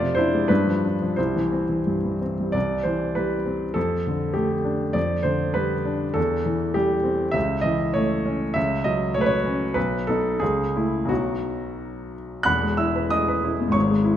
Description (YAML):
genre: classical, romantic character piece for solo piano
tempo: 84-103 BPM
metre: 2/4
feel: rubato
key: C major, E major from 7.4 s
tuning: A4 = 440 Hz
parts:
  - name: warm baby grand piano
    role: solo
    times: 0.0-14.2 s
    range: E1 to F#6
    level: -21 LUFS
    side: equal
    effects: none
room: wet recital hall reverb, RT60 1.5 s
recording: none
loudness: -21 LUFS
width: side -10 dB against mid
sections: 0.0-2.5 A section; 2.5-12.5 B section; 12.5-14.2 A section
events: none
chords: 0.5 G7; 1.2 C; 3.8 Dm/F; 5.0 G7/F; 6.2 C/E; 7.4 A/C#; 8.6 F#m/C#; 9.8 B; 10.4 A/C#; 11.1 B; 12.5 E